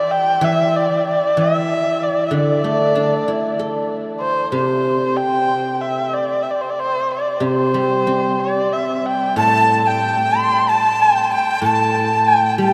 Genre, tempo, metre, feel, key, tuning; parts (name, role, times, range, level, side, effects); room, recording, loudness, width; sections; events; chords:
chinese traditional, Chinese chamber ensemble; 94 BPM; 4/4; rubato; G zhi mode; A4 = 440 Hz
dark erhu; melody; 0.0-12.7 s; C5 to C6; -19 LUFS; equal
guzheng; accompaniment; 0.0-12.7 s; A2 to A4; -23 LUFS; equal
breathy dizi; second line; 9.4-12.7 s; G5 to A5; -23 LUFS; equal
wet huge ambient reverb, RT60 7.5 s; in a vast, echoing space; -18 LUFS; mono
0.0-12.7 A section